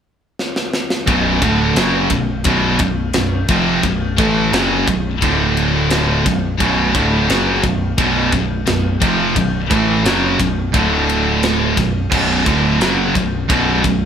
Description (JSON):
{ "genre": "heavy metal", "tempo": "87 BPM", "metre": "4/4", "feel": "straight", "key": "B minor", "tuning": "A4 = 438 Hz", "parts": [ { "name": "tight metal drum kit", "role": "drums", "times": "0.4-14.0 s", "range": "crash cymbal, kick drum, ride cymbal, snare drum", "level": "-20 LUFS", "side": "equal", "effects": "none" }, { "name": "distorted electric guitar", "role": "riff", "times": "1.1-14.1 s", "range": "B1 to A3", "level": "-19 LUFS", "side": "right 6 dB", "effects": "overdrive" }, { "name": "overdriven semi-hollow guitar", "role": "riff", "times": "1.1-14.1 s", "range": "B1 to A3", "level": "-24 LUFS", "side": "equal", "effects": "none" }, { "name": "scooped high-gain guitar", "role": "riff", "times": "1.1-14.1 s", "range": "B1 to A3", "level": "-19 LUFS", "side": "left 6 dB", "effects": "distortion" }, { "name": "picked electric bass", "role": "bass", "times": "1.1-14.1 s", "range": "B0 to A1", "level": "-22 LUFS", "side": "equal", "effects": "none" } ], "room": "light reverb", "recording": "band playing live in one room", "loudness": "-13 LUFS", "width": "side -8 dB against mid", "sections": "0.0-1.1 A section; 1.1-14.1 B section", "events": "drum fill 0.4-1.1", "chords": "0.0 N.C.; 1.1 Bm; 5.2 D5; 6.3 Bm; 10.7 D5; 11.8 Bm" }